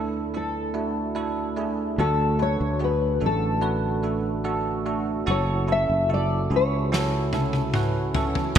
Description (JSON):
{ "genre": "pop ballad", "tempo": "73 BPM", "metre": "4/4", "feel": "straight", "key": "unclear", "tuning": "A4 = 440 Hz", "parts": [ { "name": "nylon-string guitar", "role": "melody", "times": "0.0-8.1 s", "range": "A4 to E5", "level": "-26 LUFS", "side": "left 4 dB", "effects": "analog chorus" }, { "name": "bell-like tine electric piano", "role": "accompaniment", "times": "0.0-8.6 s", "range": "D2 to B4", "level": "-26 LUFS", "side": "right 3 dB", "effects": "analog chorus" }, { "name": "sustaining fretless electric bass", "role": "bass", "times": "2.0-8.6 s", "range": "F#1 to D2", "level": "-26 LUFS", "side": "equal", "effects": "none" }, { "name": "loose indie drum kit", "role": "drums", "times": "6.9-8.6 s", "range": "hi-hat, kick drum, snare drum, toms", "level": "-24 LUFS", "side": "left 1 dB", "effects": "gated reverb" } ], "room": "moderate lush hall reverb, RT60 1.9 s, small room reverb", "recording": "bright 1980s-style digital production", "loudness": "-22 LUFS", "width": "side -9 dB against mid", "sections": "0.0-2.0 A section; 2.0-8.6 B section", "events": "drum fill 6.9-8.6", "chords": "0.0 Dsus2; 2.0 D; 5.3 F#m7" }